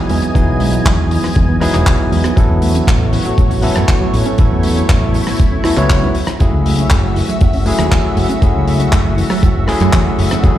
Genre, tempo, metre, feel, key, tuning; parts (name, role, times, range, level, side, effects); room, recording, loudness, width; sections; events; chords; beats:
nu-disco, nu disco; 119 BPM; 4/4; straight; F# dorian; A4 = 439 Hz
bell-like tine electric piano; accompaniment; 0.0-10.6 s; F#3 to C#5; -18 LUFS; equal; digital delay
lush unison pad; sustained chords; 0.0-10.6 s; E3 to G#5; -22 LUFS; left 1 dB; chorus, phaser, sidechain pumping
wide unison pluck; arpeggios; 0.0-10.6 s; D#3 to E4; -23 LUFS; right 3 dB; sidechain pumping, digital delay
picked electric bass with an envelope filter; bass; 0.1-10.5 s; E1 to A2; -16 LUFS; equal; sidechain pumping
damped 70s drum kit; drums; 0.1-10.5 s; handclaps, hi-hat, rim click; -22 LUFS; left 1 dB; studio reverb
electronic kick drum; drums; 0.4-10.5 s; -12 LUFS; equal; studio reverb
light reverb, studio reverb; played on a big sound system in a bare room, large studio reverb; -11 LUFS; side -12 dB against mid
0.0-10.6 A section
0.0 Emaj7; 2.4 A6; 6.2 F#m7
| 0.35 0.86 1.36 1.87 | 2.37 2.88 3.38 3.88 | 4.39 4.89 5.40 5.90 | 6.40 6.91 7.41 7.92 | 8.42 8.93 9.43 9.93 | 10.44